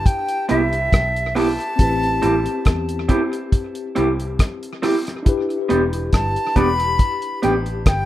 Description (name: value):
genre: lovers rock reggae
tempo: 69 BPM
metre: 4/4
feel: swing 55% on 16ths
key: unclear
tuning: A4 = 442 Hz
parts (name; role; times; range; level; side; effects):
- breathy silver concert flute; melody; 0.0-8.1 s; E5 to B5; -22 LUFS; equal; tape echo
- tine electric piano; accompaniment; 0.0-8.1 s; C4 to B4; -26 LUFS; left 4 dB; medium stereo tremolo, tape echo
- vintage muted fingered electric bass; bass; 0.0-8.1 s; E1 to E2; -24 LUFS; equal; none
- cloth-damped thuddy drum kit; drums; 0.1-8.1 s; hi-hat, kick drum, rim click; -18 LUFS; equal; none
- electric guitar through a small old amp; stabs; 0.5-7.5 s; B3 to G4; -22 LUFS; right 2 dB; spring reverb
room: wet small room reverb, RT60 0.5 s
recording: rough home demo mix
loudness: -17 LUFS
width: side -14 dB against mid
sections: 0.0-8.1 A section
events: none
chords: 0.0 Cmaj7; 1.8 Am7; 5.3 Em7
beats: 0.06 0.93 | 1.79 2.66 3.53 4.39 | 5.26 6.13 7.00 7.86